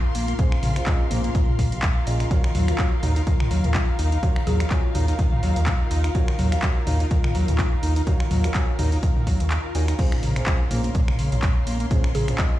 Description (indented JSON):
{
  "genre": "acid house",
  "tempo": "125 BPM",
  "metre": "4/4",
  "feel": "swing 56% on 16ths",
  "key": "unclear",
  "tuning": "A4 = 440 Hz",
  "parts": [
    { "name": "warbly tape-like pad", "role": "sustained chords", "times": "0.0-12.6 s", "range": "Db4 to F5", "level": "-33 LUFS", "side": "left 4 dB", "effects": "chorus, built-in reverb, phaser, sidechain pumping" },
    { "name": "dark chamber string section", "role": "texture", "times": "0.0-12.6 s", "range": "Eb4 to C6", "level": "-35 LUFS", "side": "left 2 dB", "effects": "sidechain pumping" },
    { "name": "overdriven acid bass", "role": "riff", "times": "0.1-12.3 s", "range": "Ab2 to Eb4", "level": "-29 LUFS", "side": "equal", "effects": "analog chorus, tape echo" },
    { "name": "round analog bass", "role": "bass", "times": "0.1-12.3 s", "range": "Bb1 to Eb2", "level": "-22 LUFS", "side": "equal", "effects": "sidechain pumping" },
    { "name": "punchy analog drum machine", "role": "drums", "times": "0.1-12.5 s", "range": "crash cymbal, finger snaps, handclaps, hi-hat, toms", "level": "-28 LUFS", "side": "right 1 dB", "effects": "none" },
    { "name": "dark grand piano", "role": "stabs", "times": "0.4-12.6 s", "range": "Db4 to Ab5", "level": "-35 LUFS", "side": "right 1 dB", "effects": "tape echo" },
    { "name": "electronic kick drum", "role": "drums", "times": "0.4-12.5 s", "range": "none", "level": "-22 LUFS", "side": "equal", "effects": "none" },
    { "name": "mallet-like synth pluck", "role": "melody", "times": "4.5-4.6, 12.1-12.3 s", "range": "Ab4", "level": "-33 LUFS", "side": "left 2 dB", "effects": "chorus, phaser, tape echo" }
  ],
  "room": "digital ambience",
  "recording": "played on a big sound system in a bare room, stone room reverb",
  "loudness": "-19 LUFS",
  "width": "side -14 dB against mid",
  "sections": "0.0-12.6 A section",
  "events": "kick drops out 9.5-10.0",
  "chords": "0.0 Bbm7; 2.3 Ebm7; 10.0 Bbm7"
}